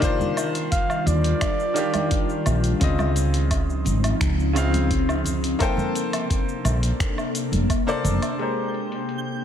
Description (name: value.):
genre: sunset chillout.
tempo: 86 BPM.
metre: 4/4.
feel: straight.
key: Ab major.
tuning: A4 = 443 Hz.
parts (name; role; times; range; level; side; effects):
mellow flugelhorn; melody; 0.0-2.5 s; D5 to F5; -28 LUFS; equal; tape echo.
bright baby grand piano; accompaniment; 0.0-9.4 s; Db3 to G5; -27 LUFS; moving between left 5 dB and right 4 dB; auto-pan, low-pass filter, tape echo.
ethereal airy pad; sustained chords; 0.0-9.4 s; C3 to A4; -27 LUFS; left 1 dB; ensemble chorus, built-in reverb.
dusty soul sampler-style drum kit; drums; 0.0-9.2 s; finger snaps, hi-hat, shaker, woodblock; -31 LUFS; equal; low-pass filter on perc, low-pass filter on hats, low-pass filter on snare, low-pass filter on room.
electronic kick drum; drums; 0.0-7.8 s; none; -24 LUFS; equal; none.
congas; percussion; 0.2-8.2 s; none; -32 LUFS; right 3 dB; none.
woody fretless electric bass; bass; 1.1-8.2 s; F1 to Eb2; -22 LUFS; equal; tube saturation, analog chorus.
twinkling granular texture; texture; 8.4-9.4 s; G5 to G6; -36 LUFS; right 1 dB; built-in reverb.
room: light reverb.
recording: none.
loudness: -20 LUFS.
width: side -9 dB against mid.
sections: 0.0-8.4 A section; 8.4-9.4 B section.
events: none.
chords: 0.0 Ebmaj9; 2.8 Dbmaj9; 5.6 Bbmaj9; 8.4 Abmaj9.